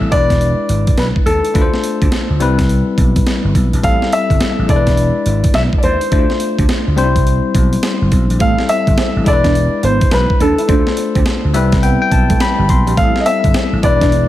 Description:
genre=R&B, new jack swing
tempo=105 BPM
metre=4/4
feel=swing 64% on 16ths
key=A minor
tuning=A4 = 438 Hz
part: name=warm grand piano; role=melody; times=0.0-14.3 s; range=A4 to F5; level=-18 LUFS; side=left 1 dB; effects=ping-pong delay
part: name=barky tine electric piano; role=accompaniment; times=0.0-14.3 s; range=G3 to C6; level=-18 LUFS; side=left 5 dB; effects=none
part: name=vintage slap bass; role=bass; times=0.0-14.2 s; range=E1 to D#2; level=-16 LUFS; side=right 1 dB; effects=none
part: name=breakbeat sampler-style drum kit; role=drums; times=0.1-14.3 s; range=hi-hat, kick drum, snare drum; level=-16 LUFS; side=right 1 dB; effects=none
part: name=electric guitar at the edge of break-up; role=riff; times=8.4-14.1 s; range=G3 to E4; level=-22 LUFS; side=right 5 dB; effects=lush chorus
room=light reverb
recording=none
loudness=-11 LUFS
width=side -14 dB against mid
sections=0.0-14.3 A section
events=tine electric piano fill 11.3-13.0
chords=0.1 E7; 1.5 Dm7; 2.4 Cmaj7; 3.8 Am7; 4.7 E7; 6.1 Dm7; 7.0 Cmaj7; 8.4 Am7; 9.3 E7; 10.7 Dm7; 11.5 Cmaj7; 13.0 Am7

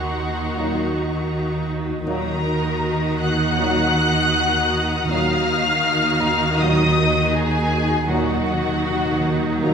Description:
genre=cinematic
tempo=80 BPM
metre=4/4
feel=straight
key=Eb minor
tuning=A4 = 442 Hz
part: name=muted studio violin section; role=melody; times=0.0-9.7 s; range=Gb5 to Gb6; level=-24 LUFS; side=left 2 dB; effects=none
part: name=muted studio violin section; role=second line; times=0.0-9.7 s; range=Gb4 to Gb5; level=-26 LUFS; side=left 2 dB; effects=none
part: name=muted studio viola section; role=accompaniment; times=0.0-9.7 s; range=Gb3 to Gb4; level=-26 LUFS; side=left 1 dB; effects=none
part: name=muted studio cello section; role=bass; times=0.0-9.7 s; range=Eb3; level=-26 LUFS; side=right 2 dB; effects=none
part: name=muted studio double bass section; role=bass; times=0.0-9.7 s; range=Eb2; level=-24 LUFS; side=right 2 dB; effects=none
part: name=felt-muted upright piano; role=texture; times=0.0-9.7 s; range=Gb5 to F6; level=-34 LUFS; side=left 1 dB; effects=none
part: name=muted studio violin section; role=texture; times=0.0-7.7 s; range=Bb5 to Eb6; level=-33 LUFS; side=left 3 dB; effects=none
part: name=mellow French horn section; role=sustained chords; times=0.6-9.7 s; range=Bb3 to Eb4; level=-30 LUFS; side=left 2 dB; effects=none
part: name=warm trombone section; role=sustained chords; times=0.6-9.7 s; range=Bb2 to Gb3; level=-28 LUFS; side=right 4 dB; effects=none
part: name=timpani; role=percussion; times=8.1-9.7 s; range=Eb3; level=-29 LUFS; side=equal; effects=none
room=wet scoring stage reverb, RT60 1.7 s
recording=none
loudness=-18 LUFS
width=side -6 dB against mid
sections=0.0-9.7 A section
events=timpani fill 8.1-9.7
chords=0.0 Ebm

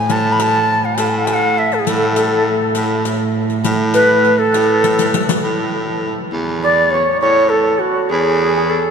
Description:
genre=Persian modal ensemble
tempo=67 BPM (dotted quarters)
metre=6/8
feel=straight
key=A avaz esfahan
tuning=A4 = 440 Hz
part: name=breathy bright ney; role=melody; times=0.0-8.9 s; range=F#4 to B5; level=-15 LUFS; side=equal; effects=none
part: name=dark cello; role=drone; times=0.0-5.5 s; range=A2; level=-22 LUFS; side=right 1 dB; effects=none
part: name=clear baritone saxophone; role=bass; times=0.1-8.9 s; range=E2 to A2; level=-19 LUFS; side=equal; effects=none
part: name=riq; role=percussion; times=0.1-5.4 s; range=none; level=-24 LUFS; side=left 3 dB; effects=none
part: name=santur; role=second line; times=6.6-8.9 s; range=G#4 to D5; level=-20 LUFS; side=right 5 dB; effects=none
room=wet cathedral reverb, RT60 6.4 s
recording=recorded in a church or concert hall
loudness=-13 LUFS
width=side -6 dB against mid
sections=0.0-5.4 A section; 5.4-8.9 B section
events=drum fill 4.8-5.4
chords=none

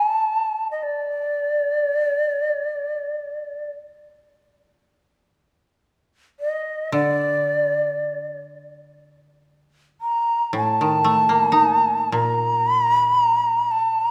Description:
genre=japanese traditional, Japanese chamber music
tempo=free time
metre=none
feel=none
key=unclear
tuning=A4 = 440 Hz
part: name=breathy shakuhachi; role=melody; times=0.0-14.1 s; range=D5 to Bb5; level=-22 LUFS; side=equal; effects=none
part: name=koto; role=accompaniment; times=6.9-14.1 s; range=A2 to Eb4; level=-28 LUFS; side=equal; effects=none
room=moderate concert hall reverb, RT60 2.3 s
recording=none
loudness=-21 LUFS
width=mono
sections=0.0-8.6 A section; 8.6-14.1 A section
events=none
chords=none

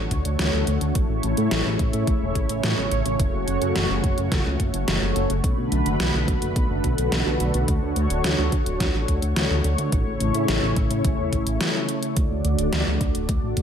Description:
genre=synthwave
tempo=107 BPM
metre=4/4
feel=straight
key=unclear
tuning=A4 = 439 Hz
part: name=analog string pad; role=sustained chords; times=0.0-13.6 s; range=C#3 to D5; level=-25 LUFS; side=equal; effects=ensemble chorus, sidechain pumping
part: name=chorused synth bass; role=bass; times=0.0-13.6 s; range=D1 to A2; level=-25 LUFS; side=equal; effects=tube saturation, sidechain pumping
part: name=electronic kick drum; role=drums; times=0.1-13.6 s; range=none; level=-24 LUFS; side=equal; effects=overdrive
part: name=pop drum kit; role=drums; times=0.1-13.6 s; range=hi-hat, snare drum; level=-27 LUFS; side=equal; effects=overdrive, gated reverb
room=moderate recital hall reverb, RT60 1.6 s, digital ambience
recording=none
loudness=-20 LUFS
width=side -8 dB against mid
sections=0.0-12.2 A section; 12.2-13.6 B section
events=none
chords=0.0 Dmaj7; 1.0 A; 3.2 F#m; 5.4 Bm7; 7.7 Dmaj7; 9.9 A; 12.2 D

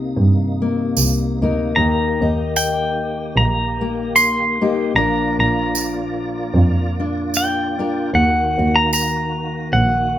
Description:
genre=acoustic folk duo or small band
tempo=75 BPM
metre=4/4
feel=swing 55% on 8ths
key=unclear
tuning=A4 = 440 Hz
part: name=fingerpicked steel-string acoustic guitar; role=accompaniment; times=0.0-10.2 s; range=Bb2 to Bb4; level=-22 LUFS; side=left 4 dB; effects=none
part: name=tonewheel organ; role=sustained chords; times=0.0-10.2 s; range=C3 to D5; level=-27 LUFS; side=right 2 dB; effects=slow rotary speaker, overdrive, chorus vibrato
part: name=dark double bass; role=bass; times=0.0-10.2 s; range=Bb1 to G2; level=-20 LUFS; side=right 1 dB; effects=none
part: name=tambourine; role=percussion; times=1.0-9.1 s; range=none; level=-22 LUFS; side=right 6 dB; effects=none
part: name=pedal steel guitar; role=melody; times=1.8-10.2 s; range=Gb5 to C6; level=-18 LUFS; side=equal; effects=none
room=light reverb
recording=minimal, uncompressed stereo recording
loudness=-16 LUFS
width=side -12 dB against mid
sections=0.0-10.2 A section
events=none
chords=0.0 Cm7; 1.8 Eb; 5.0 Bb; 8.1 Ebm

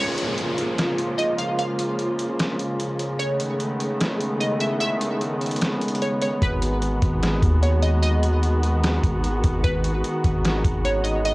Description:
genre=hip hop, atmospheric cloud-rap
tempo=149 BPM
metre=4/4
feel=half-time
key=G# dorian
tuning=A4 = 442 Hz
part: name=glassy wavetable pluck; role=melody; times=0.0-11.3 s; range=B4 to E#5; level=-27 LUFS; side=right 1 dB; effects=chorus, phaser, cassette tape, tape echo
part: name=muted studio string section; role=sustained chords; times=0.0-11.3 s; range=C#3 to F#4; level=-24 LUFS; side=equal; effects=sidechain pumping
part: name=concert harp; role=arpeggios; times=0.0-0.9 s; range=A#4 to G#5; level=-42 LUFS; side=right 3 dB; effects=none
part: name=downlifter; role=sound effects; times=0.0-3.2 s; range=none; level=-32 LUFS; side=equal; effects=none
part: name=trip hop sampler-style drum kit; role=drums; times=0.2-11.3 s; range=hi-hat, kick drum, snare drum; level=-25 LUFS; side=equal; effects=cassette tape
part: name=long sustained 808-style bass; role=bass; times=6.4-11.3 s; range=G#1 to D#2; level=-22 LUFS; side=equal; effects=none
room=light reverb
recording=home recording on cassette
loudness=-20 LUFS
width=side -21 dB against mid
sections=0.0-11.3 A section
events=break 0.0-6.4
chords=0.0 A#m7; 3.2 Amaj9#11; 6.4 G#m7

